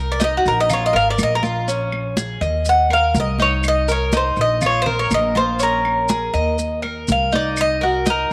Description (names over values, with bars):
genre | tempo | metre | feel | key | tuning
latin, Cuban son and guajira | 122 BPM | 4/4 | straight | Bb minor | A4 = 440 Hz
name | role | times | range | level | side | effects
Cuban tres | arpeggios | 0.0-8.3 s | Db4 to Eb5 | -26 LUFS | equal | none
upright bass | bass | 0.0-8.3 s | Ab1 to Eb2 | -26 LUFS | equal | none
Cuban tres | melody | 0.1-8.3 s | Gb4 to Gb5 | -20 LUFS | equal | none
congas | percussion | 0.2-8.3 s | none | -26 LUFS | equal | none
maracas | percussion | 0.2-8.3 s | none | -33 LUFS | equal | none
claves | percussion | 0.7-7.8 s | none | -35 LUFS | equal | none
room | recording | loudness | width
moderate spring reverb, RT60 2.0 s | faint mains hum | -18 LUFS | mono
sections
0.0-8.3 A section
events
Cuban tres solo 0.0-8.3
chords
0.0 Cm7b5; 0.7 Bb5; 1.7 Bbm7; 2.7 Eb5; 3.6 Bbsus24; 4.6 Bb5; 5.6 Bbm7; 6.6 Eb5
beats
0.21 0.70 1.20 | 1.69 2.18 2.67 3.16 | 3.65 4.14 4.63 5.12 | 5.61 6.10 6.59 7.08 | 7.57 8.06